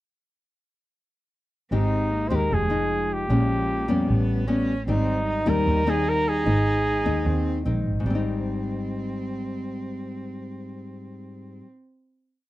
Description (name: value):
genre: bossa nova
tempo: 151 BPM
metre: 4/4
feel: straight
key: Ab major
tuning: A4 = 438 Hz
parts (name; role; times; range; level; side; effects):
- warm cello; second line; 1.7-11.6 s; Ab3 to Eb4; -33 LUFS; right 3 dB; none
- nylon-string guitar; accompaniment; 1.7-11.8 s; Ab2 to G4; -27 LUFS; left 3 dB; none
- dark double bass; bass; 1.7-11.6 s; F1 to F2; -26 LUFS; right 1 dB; none
- clear flugelhorn; melody; 1.8-7.7 s; Eb4 to C5; -26 LUFS; right 1 dB; none
room: little or no reverb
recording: dry, close 1970s-style studio recording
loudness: -22 LUFS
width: side -16 dB against mid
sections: 1.7-8.0 A section; 8.0-11.2 final chord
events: none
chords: 1.7 Abmaj7; 2.5 Fm9; 3.3 Bbm7; 4.1 A9; 4.9 Abmaj7